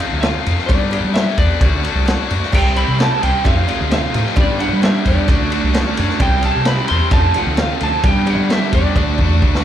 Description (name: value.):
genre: classic rock.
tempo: 131 BPM.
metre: 4/4.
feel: straight.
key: unclear.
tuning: A4 = 440 Hz.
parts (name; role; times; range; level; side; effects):
electric slide guitar; melody; 0.0-9.6 s; D5 to C6; -22 LUFS; right 1 dB; slapback echo.
tonewheel organ; sustained chords; 0.0-9.6 s; A3 to F5; -29 LUFS; equal; slow rotary speaker, chorus vibrato.
tight distorted guitar; riff; 0.0-9.6 s; F2 to G4; -22 LUFS; left 14 dB; distortion, slapback echo.
vintage drum kit; drums; 0.0-9.6 s; crash cymbal, kick drum, ride cymbal, snare drum; -18 LUFS; equal; none.
growling fingered electric bass; bass; 0.1-9.6 s; C2 to G3; -18 LUFS; equal; overdrive.
cowbell; percussion; 0.2-9.5 s; none; -33 LUFS; right 3 dB; none.
distorted electric guitar; riff; 2.5-9.6 s; F2 to D4; -23 LUFS; right 13 dB; distortion, slapback echo.
room: little or no reverb.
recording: live gig heard through the venue's PA, club reverb.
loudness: -13 LUFS.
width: side -10 dB against mid.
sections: 0.0-9.6 A section.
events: drum fill 9.0-9.6.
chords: 0.0 F; 0.7 G; 1.6 D; 2.5 C; 3.5 F; 4.4 G; 5.3 D; 6.2 C; 7.1 F; 8.0 G; 9.0 D.